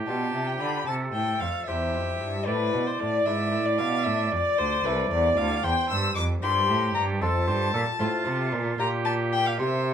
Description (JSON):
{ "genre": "classical, baroque-style sonata movement with continuo", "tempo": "76 BPM (dotted quarters)", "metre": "6/8", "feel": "straight", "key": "F major from 5.6 s", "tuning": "A4 = 440 Hz", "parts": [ { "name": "clear oboe", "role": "second line", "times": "0.0-9.9 s", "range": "F4 to D5", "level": "-30 LUFS", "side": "right 6 dB", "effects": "none" }, { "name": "lute", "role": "accompaniment", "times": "0.0-9.9 s", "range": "D2 to B4", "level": "-32 LUFS", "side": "left 1 dB", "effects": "none" }, { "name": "rich cello", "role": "bass", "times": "0.0-9.9 s", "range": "C2 to D3", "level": "-28 LUFS", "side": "right 2 dB", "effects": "none" }, { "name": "rich violin", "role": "melody", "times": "0.1-9.9 s", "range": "B4 to E6", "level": "-27 LUFS", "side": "left 5 dB", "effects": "none" } ], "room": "light reverb", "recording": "minimal, uncompressed stereo recording", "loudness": "-23 LUFS", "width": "side -8 dB against mid", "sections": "0.0-9.9 A section", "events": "none", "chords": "0.1 G7/B; 0.9 C; 2.5 Am; 3.3 E7/G#; 4.1 Am; 5.6 C7/E; 7.2 F; 8.0 F/A; 8.8 Gm7/Bb", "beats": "0.07 | 0.87 1.67 | 2.47 3.26 | 4.06 4.85 | 5.64 6.43 | 7.22 8.00 | 8.79 9.59" }